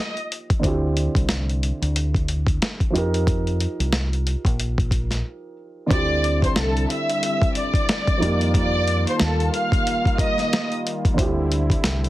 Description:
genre	hip hop, boom-bap hip-hop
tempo	91 BPM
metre	4/4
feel	swing 57% on 16ths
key	D phrygian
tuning	A4 = 443 Hz
part	warm studio violin section	melody	0.0-0.1, 5.9-10.7 s	A4 to F6	-24 LUFS	equal	high-pass filter, low-pass filter, slapback echo, plate reverb
part	dark baby grand piano	accompaniment	0.0-12.1 s	D3 to Bb4	-28 LUFS	right 2 dB	cassette tape, high-pass filter, low-pass filter
part	boom bap sampler-style drum kit	drums	0.2-12.1 s	hi-hat, kick drum, snare drum	-22 LUFS	equal	none
part	deep dub fingered electric bass	bass	0.6-12.1 s	Bb1 to F2	-23 LUFS	equal	none
part	warm analog pad	sustained chords	5.9-12.1 s	D3 to F4	-28 LUFS	equal	chorus, high-pass filter, low-pass filter
room	light reverb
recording	heavily compressed radio sound, multiband compression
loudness	-19 LUFS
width	side -16 dB against mid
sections	0.0-5.9 A section; 5.9-12.1 B section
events	break 5.2-5.9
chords	0.0 F9sus4; 0.6 D9sus4; 2.9 F9sus4; 5.9 D9sus4; 8.2 F9sus4; 11.2 D9sus4

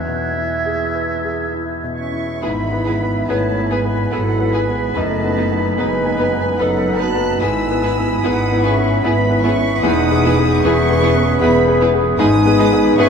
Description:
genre	classical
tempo	67-78 BPM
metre	3/4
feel	rubato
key	E major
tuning	A4 = 440 Hz
part	clear concert grand piano	melody	0.0-13.1 s	E2 to B4	-18 LUFS	left 3 dB	none
part	bright oboe	second line	0.0-13.1 s	E5 to B5	-27 LUFS	left 1 dB	none
part	concert flute	second line	0.0-13.1 s	A4 to G#6	-24 LUFS	right 3 dB	none
part	mellow clarinet	second line	0.0-13.1 s	D#4 to G#4	-28 LUFS	right 6 dB	none
part	dark studio violin section	melody	2.0-13.1 s	F#5 to F#6	-28 LUFS	right 2 dB	none
part	mellow French horn section	sustained chords	2.0-13.1 s	F#3 to F#4	-23 LUFS	right 1 dB	stereo widening
part	rich studio violin section	second line	2.4-13.1 s	G#4 to B4	-27 LUFS	left 2 dB	none
part	rich studio viola section	accompaniment	2.4-13.1 s	G#3 to E4	-26 LUFS	right 4 dB	none
part	warm studio cello section	bass	2.4-13.1 s	E2 to G#2	-24 LUFS	right 1 dB	none
part	warm studio double bass section	bass	2.4-13.1 s	E1 to G#1	-24 LUFS	right 1 dB	none
room	wet cathedral reverb, RT60 6.8 s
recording	in a vast, echoing space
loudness	-14 LUFS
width	side -6 dB against mid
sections	0.0-2.4 A section; 2.4-13.1 B section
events	none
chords	0.0 E; 2.4 E/G#; 5.0 B7/F#; 7.4 E/G#; 9.8 E; 12.2 G#m

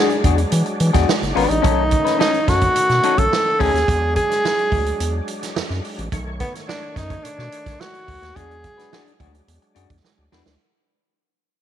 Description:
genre	funk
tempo	107 BPM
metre	4/4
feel	straight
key	unclear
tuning	A4 = 441 Hz
part	breathy tenor saxophone	melody	0.0-9.2 s	B3 to A4	-20 LUFS	right 1 dB	none
part	semi-hollow electric guitar	accompaniment	0.0-3.8, 8.4-10.5 s	C#4 to B4	-22 LUFS	left 12 dB	none
part	overdriven tonewheel organ	sustained chords	0.0-10.6 s	D#3 to C#5	-30 LUFS	equal	slow rotary speaker, chorus vibrato
part	swinging big-band drum kit	drums	0.1-10.6 s	hi-hat, kick drum, snare drum	-23 LUFS	right 3 dB	none
part	round analog bass	bass	0.2-10.6 s	F#1 to E3	-21 LUFS	equal	none
room	moderate echo chamber reverb, RT60 2.1 s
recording	1960s-style stereo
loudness	-16 LUFS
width	side -10 dB against mid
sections	0.0-10.6 A section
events	fade-out 0.0-10.6; break 3.9-8.4; drum fill 10.0-10.6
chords	0.0 E9; 1.6 B9; 3.9 E9; 6.1 B9; 8.4 E9

